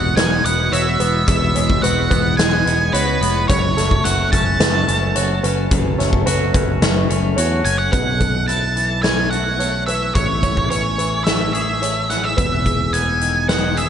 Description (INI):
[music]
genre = post-rock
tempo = 108 BPM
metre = 4/4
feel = straight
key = E major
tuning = A4 = 440 Hz
[part]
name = octave-fuzz lead guitar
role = melody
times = 0.0-13.9 s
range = B4 to A5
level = -20 LUFS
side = right 2 dB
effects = distortion, slapback echo, digital delay
[part]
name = glassy FM pad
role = sustained chords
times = 0.1-13.9 s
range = D#3 to E5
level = -28 LUFS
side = left 1 dB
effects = ensemble chorus, built-in reverb
[part]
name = twangy electric guitar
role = arpeggios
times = 0.0-13.9 s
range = E2 to G#4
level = -25 LUFS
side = left 2 dB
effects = slapback echo, digital delay
[part]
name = picked electric bass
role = bass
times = 0.0-13.9 s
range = E1 to E2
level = -21 LUFS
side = equal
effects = none
[part]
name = felt-muted upright piano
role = arpeggios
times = 0.2-13.9 s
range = G#4 to C#5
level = -27 LUFS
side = right 3 dB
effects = digital delay
[part]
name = big rock drum kit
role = drums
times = 0.2-13.9 s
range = hi-hat, kick drum, snare drum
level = -20 LUFS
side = left 1 dB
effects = none
[sound]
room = moderate lush hall reverb, RT60 2.0 s, studio ambience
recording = big arena sound, nothing above 10.4 kHz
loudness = -15 LUFS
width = side -9 dB against mid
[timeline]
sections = 0.0-7.9 A section; 7.9-13.9 B section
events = none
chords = 0.0 Eadd9; 3.5 F#m; 7.9 B7sus4; 10.2 Amaj7; 12.4 Emaj7